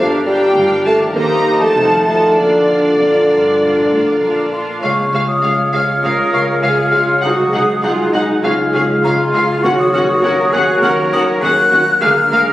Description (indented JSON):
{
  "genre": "cinematic, playful, whimsical film cue",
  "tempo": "100 BPM",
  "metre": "4/4",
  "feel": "straight",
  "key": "Bb major, Db major from 4.8 s",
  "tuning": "A4 = 440 Hz",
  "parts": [
    { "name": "muted chamber violin section", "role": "melody", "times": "0.0-12.4 s", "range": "D5 to Bb5", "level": "-21 LUFS", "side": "left 1 dB", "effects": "none" },
    { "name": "mellow hollow concert flute", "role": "second line", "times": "0.0-12.5 s", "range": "D5 to Gb6", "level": "-18 LUFS", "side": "left 1 dB", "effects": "none" },
    { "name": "muted studio violin section", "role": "second line", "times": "0.0-12.4 s", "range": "Gb4 to Gb5", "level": "-28 LUFS", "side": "equal", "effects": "none" },
    { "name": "mellow bassoon", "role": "accompaniment", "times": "0.0-12.5 s", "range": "D3 to Bb3", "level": "-17 LUFS", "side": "equal", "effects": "none" },
    { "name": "muted symphonic viola section", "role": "accompaniment", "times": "0.0-12.4 s", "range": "Bb3 to Ab4", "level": "-23 LUFS", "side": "equal", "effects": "none" },
    { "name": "dark French horn section", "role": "sustained chords", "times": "0.0-12.5 s", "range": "Ab3 to Bb4", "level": "-23 LUFS", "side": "left 1 dB", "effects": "none" },
    { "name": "concert harp", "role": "arpeggios", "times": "0.0-12.5 s", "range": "G2 to Bb4", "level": "-25 LUFS", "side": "left 2 dB", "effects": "none" },
    { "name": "muted chamber cello section", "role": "bass", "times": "0.0-12.5 s", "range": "Eb2 to Bb4", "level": "-22 LUFS", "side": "right 1 dB", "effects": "none" },
    { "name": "muted studio double bass section", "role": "bass", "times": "0.0-12.4 s", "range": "F1 to Eb2", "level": "-27 LUFS", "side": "right 1 dB", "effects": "none" },
    { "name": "clear clarinet", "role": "second line", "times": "4.8-12.5 s", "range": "Gb4 to Db5", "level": "-24 LUFS", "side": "right 1 dB", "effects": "none" },
    { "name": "mellow oboe", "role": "second line", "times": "4.8-12.5 s", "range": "Bb4 to Gb5", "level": "-20 LUFS", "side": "equal", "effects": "none" }
  ],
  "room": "wet scoring stage reverb, RT60 1.5 s",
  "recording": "recorded on a phone in the room, studio reverb",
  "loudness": "-11 LUFS",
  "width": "side -15 dB against mid",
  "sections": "0.0-4.8 A section; 4.8-12.5 B section",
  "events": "none",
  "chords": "0.0 Gm7; 1.2 Cm/Eb; 1.8 F7b9; 2.4 Bb; 4.8 Db; 7.2 Ab7/C; 8.4 Db; 9.6 Ebm7; 12.0 Bb7/D"
}